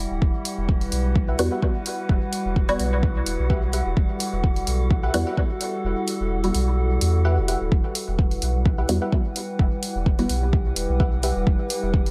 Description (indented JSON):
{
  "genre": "dub techno",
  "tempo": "128 BPM",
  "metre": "4/4",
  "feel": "swing 54% on 16ths",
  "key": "E minor",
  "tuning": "A4 = 441 Hz",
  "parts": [
    { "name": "warbly tape-like pad", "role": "sustained chords", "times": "0.0-12.1 s", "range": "G3 to F#5", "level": "-33 LUFS", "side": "equal", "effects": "chorus, built-in reverb, sidechain pumping" },
    { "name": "pure sine sub bass", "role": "bass", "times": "0.0-12.1 s", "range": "D1 to E2", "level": "-26 LUFS", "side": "equal", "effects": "sidechain pumping" },
    { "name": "metallic inharmonic drone", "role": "texture", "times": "0.0-12.1 s", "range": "G3 to G4", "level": "-35 LUFS", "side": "equal", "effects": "chorus, built-in reverb, phaser, sidechain pumping" },
    { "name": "electronic kick drum", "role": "drums", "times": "0.2-12.0 s", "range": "none", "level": "-23 LUFS", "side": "equal", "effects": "none" },
    { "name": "electronic hi-hat", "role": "drums", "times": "0.5-12.1 s", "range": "none", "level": "-33 LUFS", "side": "equal", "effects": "none" },
    { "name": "wavetable chord stab", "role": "riff", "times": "1.3-11.3 s", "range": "G4 to F#5", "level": "-36 LUFS", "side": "equal", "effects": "sidechain pumping, dub echo" },
    { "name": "filtered dub chord stab", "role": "stabs", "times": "1.4-10.4 s", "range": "G3 to F#4", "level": "-29 LUFS", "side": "equal", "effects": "phaser, sidechain pumping, dub echo" }
  ],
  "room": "little or no reverb",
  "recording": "none",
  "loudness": "-23 LUFS",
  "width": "mono",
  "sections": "0.0-7.7 A section; 7.7-12.1 A section",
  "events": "filter sweep on synth stab 0.0-7.7; kick drops out 5.8-7.7",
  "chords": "0.0 Emadd9"
}